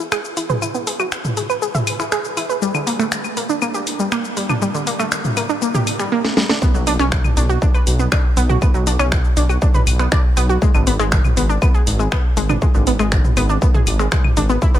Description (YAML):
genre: melodic techno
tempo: 120 BPM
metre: 4/4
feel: straight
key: B dorian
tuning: A4 = 442 Hz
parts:
  - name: analog pluck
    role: arpeggios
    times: 0.0-14.8 s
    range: D3 to B5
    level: -20 LUFS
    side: right 1 dB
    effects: chorus, sidechain pumping, dub echo
  - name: techno drum kit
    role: drums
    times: 0.0-14.8 s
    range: claves, finger snaps, hi-hat, shaker, snare drum, toms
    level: -22 LUFS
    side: equal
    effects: none
  - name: electronic kick drum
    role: drums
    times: 6.6-14.7 s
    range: none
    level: -16 LUFS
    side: equal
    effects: distortion
  - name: dark detuned saw bass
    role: bass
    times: 6.7-14.8 s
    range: E1 to B1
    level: -18 LUFS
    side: equal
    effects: sidechain pumping
room: light reverb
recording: none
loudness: -15 LUFS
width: side -12 dB against mid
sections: 0.0-6.6 A section; 6.6-14.8 B section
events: build-up 0.0-6.6; filter sweep on synth arpeggio sound 0.0-6.6; drum fill 6.2-6.6; drop 6.6-14.8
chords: 0.0 E; 2.6 Gm; 6.6 Bm; 10.6 G#m